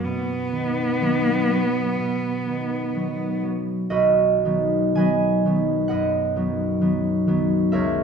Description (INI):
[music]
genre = classical, romantic duo for cello and harp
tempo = 54-66 BPM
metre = 4/4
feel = rubato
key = B major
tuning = A4 = 440 Hz
[part]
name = warm cello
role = melody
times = 0.0-3.4 s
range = B3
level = -24 LUFS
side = right 1 dB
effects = none
[part]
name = concert harp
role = accompaniment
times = 0.0-8.0 s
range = B1 to G#5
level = -20 LUFS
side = right 1 dB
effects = none
[sound]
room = wet recital hall reverb, RT60 1.4 s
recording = heard from further back in the room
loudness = -19 LUFS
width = side -6 dB against mid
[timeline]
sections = 0.0-3.9 A section; 3.9-8.0 B section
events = none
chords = 0.0 B